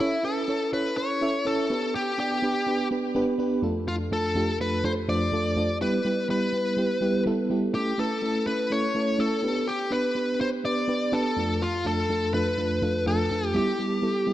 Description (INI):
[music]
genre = pop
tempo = 124 BPM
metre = 4/4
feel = straight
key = D dorian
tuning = A4 = 442 Hz
[part]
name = smooth overdriven lead guitar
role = melody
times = 0.0-14.3 s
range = E4 to D5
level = -27 LUFS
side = left 1 dB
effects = none
[part]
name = FM electric piano with tremolo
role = accompaniment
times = 0.0-14.3 s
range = F2 to E5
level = -26 LUFS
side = right 1 dB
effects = none
[sound]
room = moderate plate reverb, RT60 2.7 s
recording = dark, warm production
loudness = -23 LUFS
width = side -13 dB against mid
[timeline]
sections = 0.0-14.3 A section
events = none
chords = 0.0 A; 1.7 G; 3.6 Dm/F; 5.8 Em; 7.7 A; 9.4 G; 11.4 Dm/F; 13.5 Em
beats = | 0.00 0.48 0.97 1.45 | 1.93 2.42 2.90 3.39 | 3.87 4.35 4.84 5.32 | 5.80 6.29 6.77 7.26 | 7.74 8.22 8.71 9.19 | 9.68 10.16 10.64 11.13 | 11.61 12.10 12.58 13.06 | 13.55 14.03